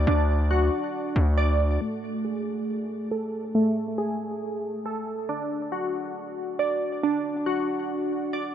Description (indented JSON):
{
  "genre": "hip hop, drill",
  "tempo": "138 BPM",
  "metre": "4/4",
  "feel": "half-time",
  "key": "unclear",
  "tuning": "A4 = 440 Hz",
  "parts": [
    { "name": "glassy digital keys", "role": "arpeggios", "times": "0.0-8.5 s", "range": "A3 to D5", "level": "-26 LUFS", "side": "right 1 dB", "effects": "chorus, low-pass filter, ping-pong delay" },
    { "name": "distorted 808-style bass", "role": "bass", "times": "0.0-1.8 s", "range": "D2", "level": "-21 LUFS", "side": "equal", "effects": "distortion" }
  ],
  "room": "light reverb",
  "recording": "none",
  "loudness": "-24 LUFS",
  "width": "side -10 dB against mid",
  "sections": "0.0-1.8 A section; 1.8-8.5 B section",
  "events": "filter sweep on synth keys 1.8-8.5",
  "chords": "0.0 D; 1.8 N.C.; 5.3 D"
}